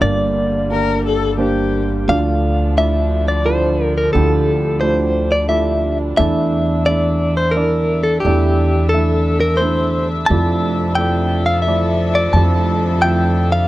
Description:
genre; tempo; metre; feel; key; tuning
acoustic folk-pop ballad; 88 BPM; 3/4; straight; D minor; A4 = 437 Hz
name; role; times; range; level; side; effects
direct-recorded clean electric guitar; melody; 0.0-13.7 s; G4 to A5; -18 LUFS; left 1 dB; tremolo
felt-muted upright piano; accompaniment; 0.0-13.7 s; F1 to F5; -20 LUFS; right 3 dB; none
warm chamber string section; sustained chords; 0.0-13.7 s; D3 to E5; -25 LUFS; left 2 dB; none
upright bass; bass; 0.0-13.7 s; G1 to F2; -18 LUFS; equal; none
warm viola; second line; 0.7-2.1 s; G4 to Bb4; -20 LUFS; left 7 dB; none
room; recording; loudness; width
little or no reverb; dry, close 1970s-style studio recording; -14 LUFS; side -16 dB against mid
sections
0.0-2.1 A section; 2.1-13.7 B section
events
none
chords
0.0 Gm; 2.1 Dmadd9; 6.2 Asus4/E; 10.3 Dmadd9/F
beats
| 0.02 0.71 1.40 | 2.10 2.78 3.47 | 4.15 4.83 5.51 | 6.19 6.87 7.56 | 8.24 8.93 9.62 | 10.31 10.99 11.68 | 12.35 13.03

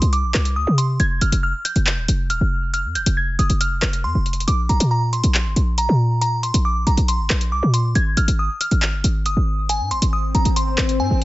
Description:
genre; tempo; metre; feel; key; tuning
hip hop, drill; 138 BPM; 4/4; half-time; unclear; A4 = 441 Hz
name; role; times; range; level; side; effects
delicate synth tine bell; melody; 0.0-11.2 s; Ab5 to Ab6; -24 LUFS; right 1 dB; chorus, low-pass filter
short 808-style bass; bass; 0.0-11.2 s; Eb1 to C3; -18 LUFS; equal; none
drill drum kit; drums; 0.0-11.2 s; handclaps, hi-hat, rim click; -23 LUFS; equal; none
swell; sound effects; 9.9-11.2 s; none; -27 LUFS; left 6 dB; none
room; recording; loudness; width
digital ambience; nothing above 7.8 kHz; -17 LUFS; side -17 dB against mid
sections
0.0-11.2 A section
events
swell 9.9-11.2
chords
0.0 Csus2; 1.0 F5; 4.5 Bbsus2; 8.0 Ab5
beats
0.13 0.56 | 1.00 1.43 1.87 2.30 | 2.74 3.17 3.61 4.04 | 4.48 4.91 5.35 5.78 | 6.21 6.65 7.08 7.52 | 7.96 8.39 8.82 9.26 | 9.69 10.13 10.56 11.00

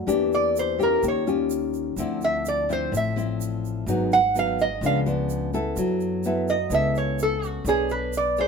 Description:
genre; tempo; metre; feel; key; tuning
bossa nova; 127 BPM; 4/4; straight; unclear; A4 = 440 Hz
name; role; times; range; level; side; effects
nylon-string guitar; accompaniment; 0.0-8.5 s; G#2 to C#5; -25 LUFS; left 3 dB; none
upright bass; bass; 0.0-8.5 s; G#1 to F#2; -30 LUFS; left 1 dB; none
egg shaker; percussion; 0.1-8.5 s; none; -41 LUFS; right 7 dB; none
lap resonator guitar; melody; 0.3-8.5 s; F#4 to F#5; -22 LUFS; right 3 dB; none
room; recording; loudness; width
light reverb; band playing live in one room; -21 LUFS; side -5 dB against mid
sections
0.0-8.5 A section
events
resonator guitar played with a steel bar solo 0.0-8.5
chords
0.1 Em7b5; 1.0 D#9; 2.0 Dm9; 3.9 G#m7; 4.8 C#7b9; 5.8 F#m7; 7.7 Bm9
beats
| 0.09 0.56 1.03 1.51 | 1.98 2.45 2.93 3.40 | 3.87 4.35 4.82 5.29 | 5.77 6.24 6.71 7.19 | 7.66 8.13

